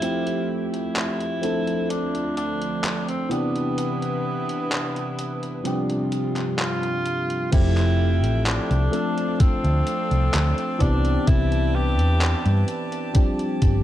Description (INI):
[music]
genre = vaporwave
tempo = 64 BPM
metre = 4/4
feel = straight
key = C major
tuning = A4 = 440 Hz
[part]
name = clear tenor saxophone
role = melody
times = 0.0-12.7 s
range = B3 to G4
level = -28 LUFS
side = equal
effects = tape echo
[part]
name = bell-like tine electric piano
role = accompaniment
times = 0.0-13.8 s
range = C3 to A4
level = -26 LUFS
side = equal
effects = analog chorus, vintage 12-bit sampler grit, analog delay
[part]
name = clear studio string section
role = sustained chords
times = 0.0-13.8 s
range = D2 to A5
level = -34 LUFS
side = right 1 dB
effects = none
[part]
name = detuned 8-bit digital drum machine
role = drums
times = 0.0-13.8 s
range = crash cymbal, handclaps, hi-hat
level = -30 LUFS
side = equal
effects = overdrive, gated reverb
[part]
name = hollow-body short-scale fingered electric bass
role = bass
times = 7.5-13.8 s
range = F1 to G2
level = -20 LUFS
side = equal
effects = tube saturation
[part]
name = electronic kick drum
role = drums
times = 7.5-13.8 s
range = none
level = -18 LUFS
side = equal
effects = overdrive
[sound]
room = light reverb, digital ambience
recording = none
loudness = -20 LUFS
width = side -12 dB against mid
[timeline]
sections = 0.0-7.5 A section; 7.5-13.8 B section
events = none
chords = 0.0 Fmaj9; 1.4 Dm7; 3.3 Cmaj9; 5.7 G7sus4; 7.5 Fmaj9; 8.9 Dm7; 10.8 Cmaj9; 13.2 G7sus4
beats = | 0.03 0.96 1.90 2.84 | 3.78 4.71 5.65 6.59 | 7.53 8.46 9.40 10.34 | 11.28 12.21 13.15